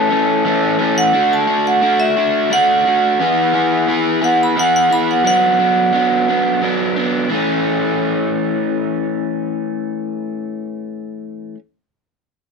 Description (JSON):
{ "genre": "rock", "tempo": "58 BPM (dotted quarters)", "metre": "6/8", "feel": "straight", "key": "A major", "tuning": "A4 = 436 Hz", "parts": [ { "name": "vibraphone with hard mallets", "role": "melody", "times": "0.0-6.6 s", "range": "E5 to B5", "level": "-15 LUFS", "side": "right 1 dB", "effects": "tape echo" }, { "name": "crunchy overdriven guitar", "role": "riff", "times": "0.0-11.6 s", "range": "E3 to G#4", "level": "-17 LUFS", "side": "equal", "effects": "none" } ], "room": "moderate studio ambience, RT60 0.4 s", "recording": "none", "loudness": "-14 LUFS", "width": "side -5 dB against mid", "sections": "0.0-7.3 A section; 7.3-11.4 B section", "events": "vibraphone solo 0.0-7.3", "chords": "0.0 A; 1.1 D; 3.2 E; 5.3 Bm; 7.3 A", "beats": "0.12 | 1.14 2.17 | 3.19 4.22 | 5.25 6.28 | 7.31 8.35 | 9.38 10.41" }